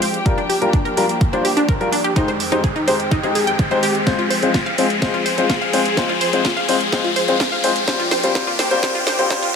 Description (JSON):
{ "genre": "progressive house", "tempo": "126 BPM", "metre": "4/4", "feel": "straight", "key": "F dorian", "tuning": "A4 = 440 Hz", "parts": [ { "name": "dark studio string section", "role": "sustained chords", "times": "0.0-9.6 s", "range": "F2 to Ab4", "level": "-25 LUFS", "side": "left 1 dB", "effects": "sidechain pumping" }, { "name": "wide unison pluck", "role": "arpeggios", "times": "0.0-9.5 s", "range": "D4 to G5", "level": "-22 LUFS", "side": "right 1 dB", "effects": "sidechain pumping, ping-pong delay" }, { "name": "house drum kit", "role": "drums", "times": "0.0-9.5 s", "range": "hi-hat, snare drum", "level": "-24 LUFS", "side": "right 2 dB", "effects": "sidechain pumping on hats" }, { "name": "riser", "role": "sound effects", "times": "0.0-9.6 s", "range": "none", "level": "-24 LUFS", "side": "left 2 dB", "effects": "none" }, { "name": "warm baby grand piano", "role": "stabs", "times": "0.3-9.4 s", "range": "G3 to Eb5", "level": "-20 LUFS", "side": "left 3 dB", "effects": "vintage 12-bit sampler grit, sidechain pumping, ping-pong delay" }, { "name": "electronic kick drum", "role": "drums", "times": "0.3-9.4 s", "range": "none", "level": "-20 LUFS", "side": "equal", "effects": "none" } ], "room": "moderate lush hall reverb, RT60 1.9 s, digital ambience", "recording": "high-pass filter", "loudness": "-15 LUFS", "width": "side -6 dB against mid", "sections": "0.0-9.6 A section", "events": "build-up 0.0-9.6; riser 0.0-9.6; filter sweep 0.0-9.6; drum fill 4.1-9.6", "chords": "0.3 Gm7/F; 2.2 Abmaj7/F; 4.1 Fm; 7.9 Gm7/F" }